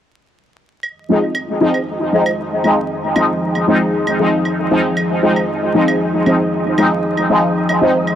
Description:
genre	dub techno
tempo	116 BPM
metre	4/4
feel	straight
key	F minor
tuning	A4 = 440 Hz
part	deep dark ambient pad	sustained chords	1.9-8.2 s	F3 to Ab4	-20 LUFS	left 1 dB	chorus, built-in reverb
part	claves	percussion	0.8-8.2 s	none	-26 LUFS	right 2 dB	dub echo
part	wind-like tuned noise texture	texture	1.3-8.2 s	Eb5	-27 LUFS	right 6 dB	built-in reverb
part	resonant sweep polysynth	stabs	1.1-7.9 s	F3 to Eb4	-15 LUFS	equal	chorus, phaser, dub echo
room	light reverb, digital ambience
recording	dry, gritty hardware recording, transformer saturation, vinyl crackle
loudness	-13 LUFS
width	side -10 dB against mid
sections	0.8-8.2 A section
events	none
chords	0.8 Fm7

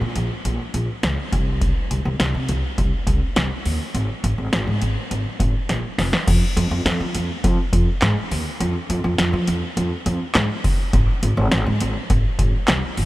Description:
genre	synth-pop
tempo	103 BPM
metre	4/4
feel	straight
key	F minor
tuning	A4 = 440 Hz
part	upright bass	bass	0.0-13.1 s	F1 to F3	-21 LUFS	equal	none
part	electro analog drum machine	drums	0.2-13.1 s	crash cymbal, handclaps, hi-hat, kick drum, snare drum	-22 LUFS	equal	none
room	light reverb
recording	none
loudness	-18 LUFS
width	side -17 dB against mid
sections	0.0-6.3 A section; 6.3-13.1 B section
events	drum fill 5.7-6.3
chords	none

